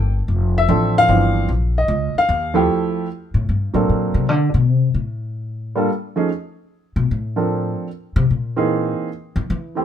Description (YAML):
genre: jazz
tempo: 150 BPM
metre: 3/4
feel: swing 65% on 8ths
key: F major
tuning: A4 = 441 Hz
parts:
  - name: warm upright piano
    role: melody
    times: 0.0-9.8 s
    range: E3 to G5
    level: -18 LUFS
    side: right 1 dB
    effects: none
  - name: upright bass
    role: bass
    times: 0.0-9.8 s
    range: F1 to E3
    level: -19 LUFS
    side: left 2 dB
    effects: none
room: light reverb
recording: minimal, uncompressed stereo recording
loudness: -17 LUFS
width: side -9 dB against mid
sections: 0.0-2.7 A section; 2.7-9.8 A section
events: upright piano solo 0.0-2.7; upright bass solo 2.7-9.8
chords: 0.3 F6; 1.5 Eb7sus2; 2.7 Fmaj9; 3.9 D7b13; 5.1 G7sus2 (rootless); 6.3 N.C.; 7.5 Bbmaj9; 8.7 C7alt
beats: | 0.28 0.68 1.08 | 1.49 1.89 2.29 | 2.69 3.09 3.49 | 3.89 4.29 4.69 | 5.09 5.49 5.89 | 6.29 6.69 7.09 | 7.49 7.89 8.29 | 8.69 9.09 9.49